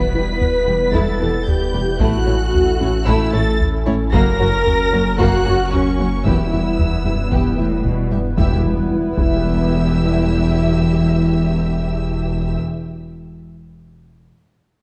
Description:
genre	cinematic, hybrid orchestral and electronic film score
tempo	113 BPM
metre	4/4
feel	straight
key	E dorian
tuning	A4 = 440 Hz
part	warm symphonic violin section	melody	0.0-12.6 s	C#6 to B6	-32 LUFS	equal	none
part	warm symphonic violin section	second line	0.0-12.6 s	A3 to E5	-30 LUFS	equal	none
part	rich symphonic viola section	accompaniment	0.0-12.6 s	C#4 to B4	-26 LUFS	equal	none
part	dark French horn section	sustained chords	0.0-11.8 s	C#4 to B4	-28 LUFS	equal	none
part	hollow soft pad	sustained chords	0.0-11.8 s	F#3 to B4	-27 LUFS	equal	ensemble chorus
part	soft round pluck	arpeggios	0.0-8.3 s	E3 to A4	-31 LUFS	equal	none
part	warm sub bass	bass	0.0-12.6 s	E1 to A1	-26 LUFS	equal	none
part	dark symphonic cello section	bass	0.1-12.6 s	E2 to B2	-25 LUFS	equal	none
part	rich studio double bass section	bass	0.1-12.6 s	E1 to A1	-25 LUFS	equal	none
part	taiko ensemble	drums	0.4-9.4 s	none	-25 LUFS	equal	none
part	impact	sound effects	8.4-10.5 s	none	-26 LUFS	equal	none
room	moderate scoring stage reverb, RT60 2.0 s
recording	dark, warm production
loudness	-17 LUFS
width	mono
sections	0.0-8.4 A section; 8.4-12.6 B section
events	impact 8.4-10.5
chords	0.0 Em; 2.0 A; 4.1 F#; 6.3 Em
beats	0.42 0.95 1.48 | 2.01 2.54 3.07 3.60 | 4.13 4.67 5.20 5.73 | 6.26 6.79 7.32 7.85 | 8.38 8.91 9.45 9.98 | 10.51 11.04 11.57 12.10

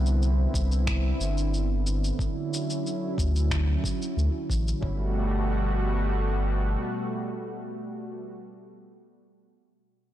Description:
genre	sunset chillout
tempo	91 BPM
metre	4/4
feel	straight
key	G major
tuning	A4 = 439 Hz
part	lush unison pad	sustained chords	0.0-8.2 s	B2 to F#4	-30 LUFS	right 1 dB	chorus
part	warm sub bass	bass	0.0-6.8 s	G1 to D2	-25 LUFS	equal	none
part	electronic shaker and finger snaps	drums	0.1-4.8 s	none	-36 LUFS	left 1 dB	studio reverb, soft clipping on snare
part	electronic kick drum	drums	0.5-5.0 s	none	-31 LUFS	equal	studio reverb
room	light reverb, digital ambience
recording	blown-out, overdriven recording, overdrive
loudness	-25 LUFS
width	side -12 dB against mid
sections	0.0-4.8 A section; 4.8-7.5 B section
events	filter sweep on analog synth pad 0.0-4.8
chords	0.0 Cmaj9; 2.2 Dmaj9; 4.8 Gmaj9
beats	0.21 0.87 1.53 | 2.19 2.85 3.51 4.17 | 4.83 5.49 6.14 6.80

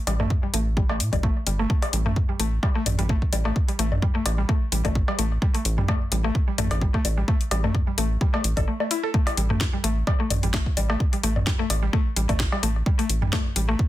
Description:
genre	minimal techno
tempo	129 BPM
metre	4/4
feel	swing 54% on 16ths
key	unclear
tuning	A4 = 441 Hz
part	mallet-like synth pluck	riff	0.1-13.7 s	G3 to A4	-29 LUFS	left 2 dB	chorus, sidechain pumping, tape echo
part	rubbery square bass	bass	0.1-13.8 s	G1 to A2	-24 LUFS	equal	sidechain pumping
part	house drum kit	drums	0.1-13.7 s	hi-hat, snare drum	-28 LUFS	left 3 dB	overdrive
part	electronic cowbell, toms and woodblock	percussion	0.1-13.4 s	none	-29 LUFS	left 1 dB	overdrive, ping-pong delay
part	electronic kick drum	drums	0.3-13.9 s	none	-23 LUFS	equal	overdrive
room	light reverb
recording	dense, heavily limited modern master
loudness	-21 LUFS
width	side -14 dB against mid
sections	0.0-13.9 A section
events	break 8.7-9.1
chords	0.0 A5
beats	0.30 0.77 1.23 | 1.70 2.16 2.63 3.10 | 3.56 4.03 4.49 4.96 | 5.42 5.88 6.35 6.82 | 7.28 7.75 8.21 8.68 | 9.14 9.61 10.07 10.54 | 11.00 11.47 11.93 12.40 | 12.86 13.33 13.79

